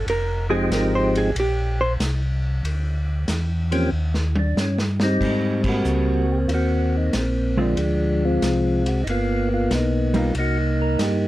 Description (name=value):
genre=soul jazz organ trio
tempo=93 BPM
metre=4/4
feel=swing 68% on 8ths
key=Ab major from 5.2 s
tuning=A4 = 440 Hz
part: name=hollow-body jazz guitar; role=accompaniment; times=0.0-1.9, 7.6-10.3 s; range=D3 to C5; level=-23 LUFS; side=right 1 dB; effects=none
part: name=mellow tonewheel organ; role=bass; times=0.0-11.3 s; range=F1 to Ab2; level=-23 LUFS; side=equal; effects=chorus vibrato, slow rotary speaker
part: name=vintage drum kit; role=drums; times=0.1-11.2 s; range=crash cymbal, hi-hat, kick drum, ride cymbal, snare drum, toms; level=-29 LUFS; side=equal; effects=none
part: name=percussive tonewheel organ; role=melody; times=0.5-11.3 s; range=F3 to Bb4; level=-22 LUFS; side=equal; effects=slow rotary speaker
room=little or no reverb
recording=none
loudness=-19 LUFS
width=side -16 dB against mid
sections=0.0-5.2 A section; 5.2-11.3 B section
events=hollow-body jazz guitar solo 0.0-5.2; drum fill 3.9-5.2; band accent 5.5-5.8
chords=0.1 Fm9; 2.6 Dm9; 3.9 Eb6; 5.2 Abmaj9; 7.8 Dm7b5; 9.1 Gaug; 10.3 Cm7